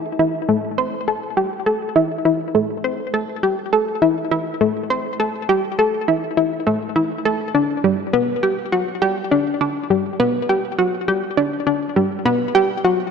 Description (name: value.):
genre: ambient.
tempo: 102 BPM.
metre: 4/4.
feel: straight.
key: A dorian.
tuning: A4 = 435 Hz.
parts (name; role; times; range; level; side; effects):
analog pluck; solo; 0.0-13.0 s; G3 to C5; -17 LUFS; equal; chorus, ping-pong delay.
room: wet plate reverb, RT60 2.9 s.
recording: none.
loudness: -17 LUFS.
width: side -6 dB against mid.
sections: 0.0-13.1 A section.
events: none.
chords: none.